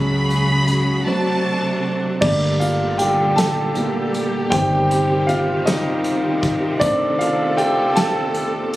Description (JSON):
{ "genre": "six-eight pop ballad", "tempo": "52 BPM (dotted quarters)", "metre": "6/8", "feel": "straight", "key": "G minor", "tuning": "A4 = 443 Hz", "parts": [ { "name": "warm studio violin section", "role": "second line", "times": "0.0-1.8 s", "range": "A5 to B5", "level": "-23 LUFS", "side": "equal", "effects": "digital delay" }, { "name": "dark baby grand piano", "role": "accompaniment", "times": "0.0-8.8 s", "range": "Eb3 to A5", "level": "-19 LUFS", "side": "equal", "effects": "none" }, { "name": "warm studio string section", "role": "sustained chords", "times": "0.0-8.8 s", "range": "Bb2 to A4", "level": "-24 LUFS", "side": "equal", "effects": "none" }, { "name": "vintage muted fingered electric bass", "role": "bass", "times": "0.0-8.8 s", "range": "G1 to C#2", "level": "-23 LUFS", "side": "equal", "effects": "none" }, { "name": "unplugged drum kit", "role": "drums", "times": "0.3-8.8 s", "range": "crash cymbal, hi-hat, kick drum, snare drum", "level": "-24 LUFS", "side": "equal", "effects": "none" } ], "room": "light reverb, small room ambience", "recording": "recorded on a phone in the room, studio ambience", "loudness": "-16 LUFS", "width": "side -16 dB against mid", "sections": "0.0-2.2 A section; 2.2-8.8 A section", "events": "grand piano solo 0.0-2.2, 2.2-8.8; break 1.1-2.2", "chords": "0.0 C#sus4; 1.1 D7; 2.2 Gmadd9; 4.5 Cm/G; 6.8 Adim", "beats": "1.07 | 2.23 3.38 | 4.52 5.67 | 6.81 7.96" }